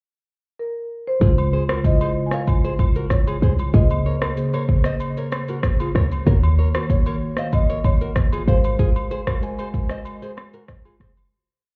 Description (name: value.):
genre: afrobeats.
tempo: 95 BPM.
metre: 4/4.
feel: straight.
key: Db major.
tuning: A4 = 440 Hz.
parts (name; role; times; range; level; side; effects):
marimba with soft mallets; melody; 0.6-11.0 s; Bb4 to Ab5; -30 LUFS; equal; delay.
mellow tine electric piano; accompaniment; 1.2-11.3 s; Db3 to Ab5; -27 LUFS; equal; none.
nylon-string guitar; riff; 1.2-11.1 s; F4 to Eb5; -33 LUFS; equal; delay.
short 808-style bass; bass; 1.2-11.3 s; Gb1 to Eb2; -21 LUFS; equal; none.
afro-pop drum kit; drums; 1.2-11.3 s; kick drum, rim click, shaker; -23 LUFS; equal; none.
agogo bells and woodblock; percussion; 1.4-11.3 s; none; -37 LUFS; equal; none.
room: studio reverb.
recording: heard muffled through a wall, club reverb, EQ.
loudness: -20 LUFS.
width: mono.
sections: 0.0-1.2 pickup bar; 1.2-11.3 verse.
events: fade-out 8.8-11.3.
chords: 0.0 N.C.; 1.2 Dbmaj7; 3.7 Bbm7/Db; 6.3 Ebm7; 8.5 Ab13.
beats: 0.58 | 1.21 1.84 2.48 3.11 | 3.74 4.37 5.00 5.63 | 6.26 6.90 7.53 8.16 | 8.79 9.42 10.05 10.69.